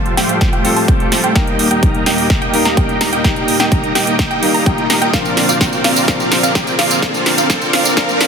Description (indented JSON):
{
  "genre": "EDM, festival progressive house",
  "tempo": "127 BPM",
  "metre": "4/4",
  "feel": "straight",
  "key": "unclear",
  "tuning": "A4 = 439 Hz",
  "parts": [
    { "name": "clear grand piano", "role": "accompaniment", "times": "0.0-8.3 s", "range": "Bb2 to Bb4", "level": "-20 LUFS", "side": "left 4 dB", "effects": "sidechain pumping, digital delay" },
    { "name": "rich chamber string section", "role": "sustained chords", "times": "0.0-8.3 s", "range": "Eb2 to C4", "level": "-25 LUFS", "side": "right 1 dB", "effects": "sidechain pumping" },
    { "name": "wide unison pluck", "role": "arpeggios", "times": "0.0-8.3 s", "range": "F5 to Bb5", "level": "-22 LUFS", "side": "right 1 dB", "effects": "sidechain pumping, digital delay" },
    { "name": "dense compressed supersaw", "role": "riff", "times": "0.0-8.3 s", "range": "A3 to Bb5", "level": "-17 LUFS", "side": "right 1 dB", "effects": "sidechain pumping, low-pass filter, digital delay" },
    { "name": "riser", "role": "sound effects", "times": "1.9-8.3 s", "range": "none", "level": "-26 LUFS", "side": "equal", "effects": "none" },
    { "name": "big-room dance drum kit", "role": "drums", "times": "0.1-8.3 s", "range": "hi-hat, snare drum, tambourine", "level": "-17 LUFS", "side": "right 2 dB", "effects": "high-pass filter on hats, high-pass filter on snare, high-pass filter on perc" },
    { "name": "electronic kick drum", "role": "drums", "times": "0.4-8.1 s", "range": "none", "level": "-16 LUFS", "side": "equal", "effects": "none" }
  ],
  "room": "light reverb, digital ambience",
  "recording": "dense, heavily limited modern master, high-pass filter",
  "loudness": "-11 LUFS",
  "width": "side -6 dB against mid",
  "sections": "0.0-8.3 A section",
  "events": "build-up 0.0-8.3; drum fill 0.0-8.3; filter sweep on supersaw synth 0.0-8.3; filter sweep on synth pluck 0.0-8.3; filter sweep 0.0-8.3; riser 1.9-8.3",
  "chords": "0.0 Fadd9; 1.4 Eb; 5.1 Bbadd9"
}